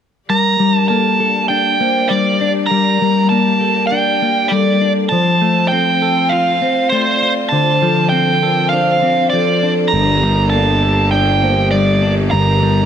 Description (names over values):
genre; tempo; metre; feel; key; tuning
rock; 100 BPM; 4/4; straight; G minor; A4 = 440 Hz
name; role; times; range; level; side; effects
biting lead guitar; melody; 0.3-12.9 s; C5 to Bb5; -15 LUFS; right 4 dB; overdrive, tape echo
bright studio string section; sustained chords; 0.3-12.9 s; Bb3 to D5; -27 LUFS; left 3 dB; none
semi-hollow electric guitar; arpeggios; 0.3-12.9 s; G2 to A4; -17 LUFS; left 5 dB; tape echo
vibraphone with medium hard mallets; arpeggios; 0.3-12.9 s; A4 to D5; -22 LUFS; right 4 dB; tape echo
fuzz picked electric bass; bass; 9.9-12.9 s; G1; -14 LUFS; equal; overdrive
room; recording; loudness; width
moderate concert hall reverb, RT60 1.9 s, studio reverb; none; -12 LUFS; side -8 dB against mid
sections
0.3-12.9 A section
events
none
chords
0.3 Gmadd9; 5.1 F; 7.5 Dm7; 9.9 Gmadd9